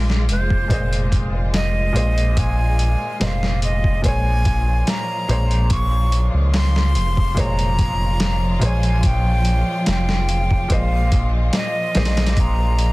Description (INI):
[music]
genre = trip hop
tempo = 72 BPM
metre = 4/4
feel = straight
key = Bb dorian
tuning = A4 = 440 Hz
[part]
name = breathy bright jazz flute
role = melody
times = 0.0-12.9 s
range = C5 to Db6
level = -25 LUFS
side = equal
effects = tape echo
[part]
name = felt-muted upright piano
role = accompaniment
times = 0.0-12.9 s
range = Bb2 to Eb5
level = -26 LUFS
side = equal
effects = harmonic tremolo, tape echo
[part]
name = rich symphonic string section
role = sustained chords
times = 0.0-12.9 s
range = F3 to F4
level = -28 LUFS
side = equal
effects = none
[part]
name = round analog bass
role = bass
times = 0.0-12.9 s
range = F1 to Db2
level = -19 LUFS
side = equal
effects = tube saturation
[part]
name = dusty soul sampler-style drum kit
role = drums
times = 0.1-12.9 s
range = hi-hat, kick drum, snare drum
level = -21 LUFS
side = equal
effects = overdrive
[sound]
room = small room ambience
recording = dense, heavily limited modern master, vinyl crackle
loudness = -16 LUFS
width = side -21 dB against mid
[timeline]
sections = 0.0-12.9 A section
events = none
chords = 0.0 Abadd9; 4.0 Bbm9; 10.7 Abadd9